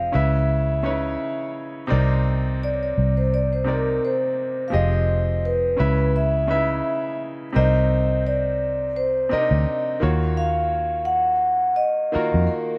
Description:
R&B, neo-soul; 85 BPM; 4/4; swing 53% on 16ths; A4 = 438 Hz
vibraphone with soft mallets; melody; 0.0-12.8 s; Bb4 to Gb5; -25 LUFS; equal; plate reverb
clear grand piano; accompaniment; 0.0-12.8 s; C3 to Fb5; -29 LUFS; equal; plate reverb
vintage muted fingered electric bass; bass; 0.0-12.5 s; F1 to F2; -24 LUFS; equal
moderate studio reverb, RT60 0.6 s; -22 LUFS; mono
0.0-7.5 A section; 7.5-12.8 B section
0.1 Dbm9; 1.9 Cm9; 4.7 Fm9; 5.8 Dbm9; 7.5 Cm9; 10.0 Ebm9

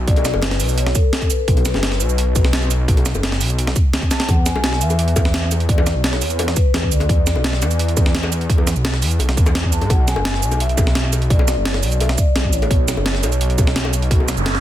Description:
liquid drum and bass; 171 BPM; 4/4; straight; A4 = 445 Hz
swelling detuned saw bass; bass; 0.0-14.6 s; F#1 to G#2; -19 LUFS; equal
vibraphone with soft mallets; melody; 0.1-13.9 s; A4 to A5; -25 LUFS; left 3 dB; digital delay
breakbeat sampler-style drum kit; drums; 0.1-14.6 s; hi-hat, shaker, snare drum; -22 LUFS; right 1 dB
electronic kick drum; drums; 0.1-14.2 s; -17 LUFS; equal
bongos; percussion; 0.2-14.5 s; -28 LUFS; left 4 dB
noise sweep; sound effects; 14.2-14.6 s; -23 LUFS; right 4 dB
little or no reverb; dense, heavily limited modern master; -15 LUFS; side -12 dB against mid
0.0-4.3 A section; 4.3-14.6 A section
drop 0.0-4.3, 4.3-14.6; drum fill 4.1; noise sweep 14.2-14.6
0.0 B5; 4.3 E5; 9.9 Bsus2

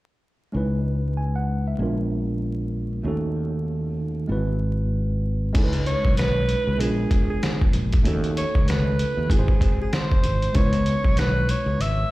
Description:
hip hop, jazz-hop; 96 BPM; 4/4; swing 59% on 16ths; C# minor; A4 = 440 Hz
tine electric piano; accompaniment; 0.5-12.1 s; G#3 to G#5; -28 LUFS; right 1 dB; medium stereo tremolo, plate reverb
fretless electric bass; bass; 0.5-12.0 s; G#1 to D#2; -24 LUFS; equal
trip hop sampler-style drum kit; drums; 5.5-12.0 s; crash cymbal, hi-hat, kick drum, snare drum; -22 LUFS; equal
mellow alto saxophone; melody; 5.9-12.1 s; G#4 to E5; -27 LUFS; right 1 dB; plate reverb, tape echo
light reverb; played on a big sound system in a bare room, large studio reverb, vinyl crackle; -20 LUFS; side -18 dB against mid
0.6-5.5 A section; 5.5-12.1 B section
0.6 C#m7; 1.8 A#7b9; 3.0 D#m7b5; 4.3 G#7alt; 5.5 C#m7; 6.8 A#7b9; 8.1 D#m7b5; 9.3 G#aug7; 10.6 C#m7

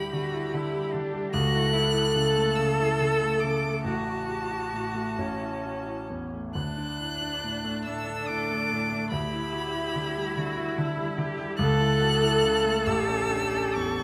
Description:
classical, slow romantic movement for piano quartet; 43-50 BPM (dotted quarters); 6/8; rubato; A4 = 442 Hz
rich violin; melody; 0.0-14.0 s; A5 to F#6; -34 LUFS; equal
clear cello; second line; 0.0-14.0 s; D4 to A4; -34 LUFS; equal
rich viola; accompaniment; 0.0-14.0 s; C#4 to A4; -32 LUFS; equal
warm grand piano; accompaniment; 0.0-14.0 s; A1 to G4; -31 LUFS; equal
wet recital hall reverb, RT60 1.4 s; -27 LUFS; mono
0.0-14.0 A section
0.0 Em7/D; 1.3 A/C#; 3.9 F#m/A; 5.2 A; 6.6 D; 9.1 Em7/D; 11.6 A/C#; 12.9 A7

